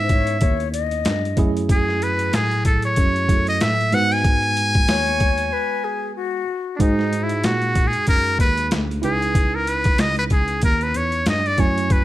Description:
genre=hip hop, jazz-hop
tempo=94 BPM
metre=4/4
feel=swing 58% on 16ths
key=G# phrygian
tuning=A4 = 439 Hz
part: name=trumpet with metal mute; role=melody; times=0.0-12.0 s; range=D4 to G#5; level=-21 LUFS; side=equal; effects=slapback echo
part: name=breathy concert flute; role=second line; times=0.0-6.8 s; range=F#4 to D#5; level=-25 LUFS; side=left 10 dB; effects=none
part: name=mellow tine electric piano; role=accompaniment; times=0.0-12.0 s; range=F#3 to G#5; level=-28 LUFS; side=right 6 dB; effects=medium stereo tremolo
part: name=tine electric piano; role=bass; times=0.0-12.0 s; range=C#2 to A#2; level=-24 LUFS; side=equal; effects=overdrive, fast stereo tremolo
part: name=boom bap sampler-style drum kit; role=drums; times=0.1-12.0 s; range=hi-hat, kick drum, snare drum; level=-20 LUFS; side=equal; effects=overdrive
room=digital ambience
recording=vinyl crackle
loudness=-17 LUFS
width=side -15 dB against mid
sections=0.0-6.8 A section; 6.8-12.0 B section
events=break 5.5-6.8; muted trumpet solo 6.8-12.0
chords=0.0 C#m9; 1.4 F#m9; 3.9 G#m7; 6.8 G#sus2; 9.0 C#m9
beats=0.42 1.05 | 1.69 2.33 2.97 3.61 | 4.25 4.88 5.52 6.16 | 6.80 7.44 8.08 8.71 | 9.35 9.99 10.63 11.27 | 11.90

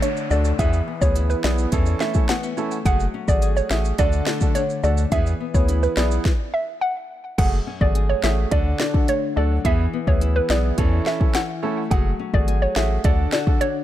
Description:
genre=dancehall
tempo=106 BPM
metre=4/4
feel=straight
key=F# minor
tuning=A4 = 440 Hz
part: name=hollow square pluck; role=melody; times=0.0-13.7 s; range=B4 to F#5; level=-25 LUFS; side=right 1 dB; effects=chorus, digital delay
part: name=warm grand piano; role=accompaniment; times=0.0-13.7 s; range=A3 to A4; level=-28 LUFS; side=right 7 dB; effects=sidechain pumping
part: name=nylon-string guitar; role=arpeggios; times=0.0-13.8 s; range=F#2 to G#4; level=-28 LUFS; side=left 8 dB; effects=none
part: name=afro-pop drum kit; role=drums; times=0.0-13.7 s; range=crash cymbal, hi-hat, kick drum, snare drum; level=-21 LUFS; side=equal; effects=none
part: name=maracas and timbales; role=percussion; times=0.0-6.2 s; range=none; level=-37 LUFS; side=right 8 dB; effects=none
part: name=downlifter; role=sound effects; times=0.0-2.9 s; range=none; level=-39 LUFS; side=left 1 dB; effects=none
part: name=round analog bass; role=bass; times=0.3-13.3 s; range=F#1 to E2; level=-21 LUFS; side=equal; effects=none
room=digital ambience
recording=dark, warm production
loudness=-18 LUFS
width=side -12 dB against mid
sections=0.0-7.4 A section; 7.4-13.8 B section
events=stop 6.3-7.4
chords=0.0 D; 0.6 E; 1.7 A/E; 2.9 F#madd9; 4.0 D; 5.1 E; 6.3 N.C.; 7.4 F#madd9; 8.5 D; 9.6 E; 10.8 A/E; 11.9 F#madd9; 13.0 D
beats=0.03 | 0.59 1.16 1.72 2.29 | 2.86 3.42 3.99 4.55 | 5.12 5.69 6.25 6.82 | 7.38 7.95 8.52 9.08 | 9.65 10.21 10.78 11.35 | 11.91 12.48 13.04 13.61

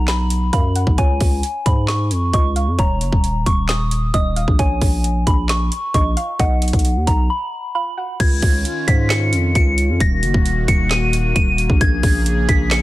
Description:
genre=hip hop, trap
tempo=133 BPM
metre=4/4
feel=half-time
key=unclear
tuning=A4 = 439 Hz
part: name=soft synth bell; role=melody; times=0.0-12.8 s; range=F#5 to Eb7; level=-22 LUFS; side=equal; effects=chorus, low-pass filter, tape echo
part: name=soft round pluck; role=second line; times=0.0-8.2 s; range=Db5 to F#5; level=-28 LUFS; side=right 4 dB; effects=chorus, tape echo
part: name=growling 808-style bass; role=bass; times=0.0-12.8 s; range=Eb1 to Ab2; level=-19 LUFS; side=equal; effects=none
part: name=trap drum kit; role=drums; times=0.1-12.8 s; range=crash cymbal, handclaps, hi-hat, kick drum, snare drum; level=-18 LUFS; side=equal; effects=none
part: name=warm analog pad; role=sustained chords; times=8.2-12.8 s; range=Db3 to Ab4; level=-25 LUFS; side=left 2 dB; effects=chorus
room=little or no reverb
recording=dense, heavily limited modern master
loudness=-15 LUFS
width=side -17 dB against mid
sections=0.0-8.2 A section; 8.2-12.8 B section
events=break 7.3-8.2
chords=0.0 B5; 1.0 Db; 2.8 Eb5; 4.6 Bbm7; 6.4 B; 8.2 Dbadd9; 10.0 Ebm; 11.8 Bbm7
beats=0.08 0.53 | 0.98 1.43 1.88 2.33 | 2.79 3.24 3.69 4.14 | 4.59 5.04 5.49 5.94 | 6.39 6.85 7.30 7.75 | 8.20 8.65 9.10 9.55 | 10.00 10.46 10.91 11.36 | 11.81 12.26 12.71

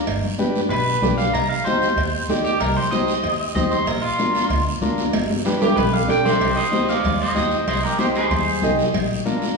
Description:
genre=latin, cumbia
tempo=190 BPM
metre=4/4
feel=straight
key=C minor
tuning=A4 = 440 Hz
part: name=upright bass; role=bass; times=0.1-9.1 s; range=G1 to Eb2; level=-26 LUFS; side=equal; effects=none
part: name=congas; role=percussion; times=0.1-9.6 s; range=none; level=-25 LUFS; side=left 2 dB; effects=none
part: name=cowbell and timbales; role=percussion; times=0.1-9.1 s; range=none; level=-27 LUFS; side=right 5 dB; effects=none
part: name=guiro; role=percussion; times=0.1-9.6 s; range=none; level=-34 LUFS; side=right 4 dB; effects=none
part: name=combo organ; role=accompaniment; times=0.4-9.5 s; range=D4 to Eb5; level=-24 LUFS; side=left 1 dB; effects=spring reverb
part: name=electric guitar at the edge of break-up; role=melody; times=0.7-8.8 s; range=F4 to Bb5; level=-22 LUFS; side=right 1 dB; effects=spring reverb
room=wet recital hall reverb, RT60 1.4 s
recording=recorded in a church or concert hall, small room ambience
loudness=-18 LUFS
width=side -3 dB against mid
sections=0.0-6.4 A section; 6.4-9.6 B section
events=clean electric guitar solo 0.0-6.4; drum fill 5.1-6.4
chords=0.1 G; 1.3 Cm; 3.9 Bb; 5.1 G; 6.4 Cm; 8.9 Bb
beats=| 0.07 0.39 0.71 1.02 | 1.34 1.66 1.97 2.29 | 2.61 2.92 3.24 3.56 | 3.87 4.19 4.51 4.82 | 5.14 5.46 5.77 6.09 | 6.41 6.72 7.04 7.36 | 7.68 7.99 8.31 8.63 | 8.95 9.26

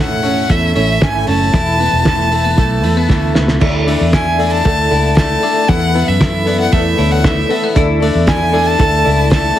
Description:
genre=jangly indie pop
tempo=116 BPM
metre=4/4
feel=straight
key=unclear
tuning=A4 = 442 Hz
part: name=bright violin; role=melody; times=0.0-9.6 s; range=E5 to A5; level=-17 LUFS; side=left 1 dB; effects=slapback echo
part: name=fingerpicked steel-string acoustic guitar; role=accompaniment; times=0.0-9.6 s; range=A2 to B4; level=-21 LUFS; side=right 8 dB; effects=none
part: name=twelve-string electric guitar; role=arpeggios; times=0.0-9.6 s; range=A2 to E4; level=-20 LUFS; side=left 5 dB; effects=slapback echo
part: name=vintage muted fingered electric bass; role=bass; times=0.0-9.5 s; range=E1 to F#2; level=-17 LUFS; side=equal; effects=none
part: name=cloth-damped thuddy drum kit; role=drums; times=0.2-9.6 s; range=crash cymbal, hi-hat, kick drum, snare drum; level=-17 LUFS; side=equal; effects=none
part: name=mellow reed electric piano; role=accompaniment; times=3.6-9.6 s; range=A4 to F#5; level=-20 LUFS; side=left 4 dB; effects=fast tremolo
room=moderate large studio reverb, RT60 0.9 s, small room ambience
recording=heavily compressed radio sound, multiband compression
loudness=-11 LUFS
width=side -12 dB against mid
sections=0.0-3.6 A section; 3.6-9.6 B section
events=drum fill 3.1-3.6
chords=0.0 A; 1.5 Esus4; 3.6 Dsus2; 5.7 Esus4; 7.8 Dsus2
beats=0.49 1.01 | 1.53 2.06 2.57 3.09 | 3.61 4.13 4.65 5.17 | 5.69 6.21 6.73 7.25 | 7.76 8.28 8.80 9.32

